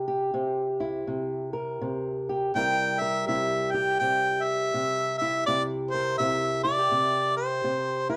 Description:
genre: acoustic country blues, solo or duo.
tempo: 82 BPM.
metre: 4/4.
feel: swing 62% on 8ths.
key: C mixolydian.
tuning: A4 = 440 Hz.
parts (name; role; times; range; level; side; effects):
fingerpicked old ladder-braced acoustic guitar; accompaniment; 0.0-8.2 s; C3 to Bb4; -31 LUFS; equal; none.
clear harmonica; melody; 2.6-8.2 s; C5 to G5; -27 LUFS; equal; none.
room: moderate studio reverb, RT60 0.5 s.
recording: dark, warm production.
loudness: -27 LUFS.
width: mono.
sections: 0.0-2.5 A section; 2.5-8.2 A section.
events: none.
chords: 0.0 C7.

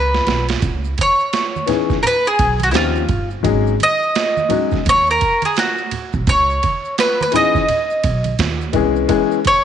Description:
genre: hip hop, jazz-hop.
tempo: 85 BPM.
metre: 4/4.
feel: swing 62% on 16ths.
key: C# dorian.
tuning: A4 = 440 Hz.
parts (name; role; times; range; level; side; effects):
bowl-back mandolin; melody; 0.0-9.6 s; E4 to D#5; -16 LUFS; right 1 dB; none.
upright bass; bass; 0.0-9.0 s; G1 to D#2; -20 LUFS; right 1 dB; none.
boom bap sampler-style drum kit; drums; 0.1-9.6 s; hi-hat, kick drum, ride cymbal, snare drum; -22 LUFS; right 4 dB; none.
maracas and congas; percussion; 0.6-9.6 s; none; -30 LUFS; right 8 dB; none.
warm upright piano; accompaniment; 1.7-9.4 s; E3 to G#4; -18 LUFS; left 10 dB; none.
room: light reverb.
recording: 1960s-style stereo with parts hard left and right, nothing above 11.0 kHz.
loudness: -14 LUFS.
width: side -9 dB against mid.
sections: 0.6-9.6 A section.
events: drum fill 0.0-0.6.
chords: 0.0 C#m7; 2.7 D#13; 3.4 G#7sus4; 6.3 C#m9; 8.4 Cmaj7#5; 9.1 C#m7.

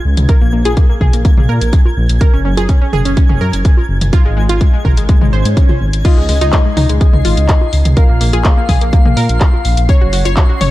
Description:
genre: progressive house.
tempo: 125 BPM.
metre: 4/4.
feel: straight.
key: unclear.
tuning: A4 = 440 Hz.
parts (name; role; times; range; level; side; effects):
analog pluck; arpeggios; 0.0-10.7 s; Ab3 to Db5; -20 LUFS; left 1 dB; chorus, sidechain pumping, dub echo.
dark detuned saw bass; bass; 0.0-10.7 s; Gb1 to Bb2; -14 LUFS; equal; sidechain pumping.
twinkling granular texture; texture; 0.0-10.7 s; Ab6 to C7; -30 LUFS; right 2 dB; built-in reverb, sidechain pumping.
house drum kit; drums; 0.2-10.7 s; crash cymbal, handclaps, hi-hat; -21 LUFS; left 1 dB; none.
electronic toms and congas; percussion; 0.2-10.7 s; none; -20 LUFS; right 1 dB; sidechain pumping on perc, sidechain pumping on toms.
electronic kick drum; drums; 0.3-10.5 s; none; -10 LUFS; equal; none.
swell; sound effects; 5.2-6.0 s; none; -26 LUFS; right 2 dB; none.
soft octave-layered synth lead; melody; 6.0-10.7 s; Db5 to F5; -21 LUFS; left 2 dB; chorus, phaser, dub echo.
room: little or no reverb.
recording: dark, warm production.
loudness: -9 LUFS.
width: side -16 dB against mid.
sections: 0.0-10.7 A section.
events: swell 5.2-6.0.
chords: 0.3 Absus2/Bb; 2.2 Gb; 4.1 Ab; 6.0 Dbadd9; 8.0 Bb5; 9.9 Gb5.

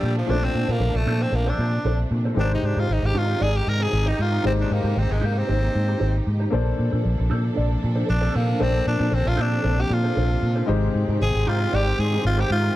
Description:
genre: disco.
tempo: 116 BPM.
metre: 4/4.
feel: straight.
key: Bb major.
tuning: A4 = 441 Hz.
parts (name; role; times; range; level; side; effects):
raspy tenor saxophone; melody; 0.0-12.8 s; F3 to Bb4; -26 LUFS; equal; none.
mellow electric guitar; accompaniment; 0.0-12.7 s; D4 to D5; -31 LUFS; right 1 dB; wah.
warm baby grand piano; accompaniment; 0.0-12.8 s; Bb2 to D5; -31 LUFS; left 6 dB; none.
clear studio string section; sustained chords; 0.0-12.8 s; Bb2 to A4; -30 LUFS; equal; none.
fingered electric bass; bass; 0.0-12.7 s; Ab1 to Bb2; -22 LUFS; equal; none.
room: light reverb, small room ambience.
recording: dark, warm production.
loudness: -20 LUFS.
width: side -15 dB against mid.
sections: 0.0-12.8 A section.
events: tenor saxophone solo 0.0-12.8.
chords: 0.0 Bbmaj9; 2.4 Abmaj7; 6.5 Bbmaj9; 10.7 Abmaj7.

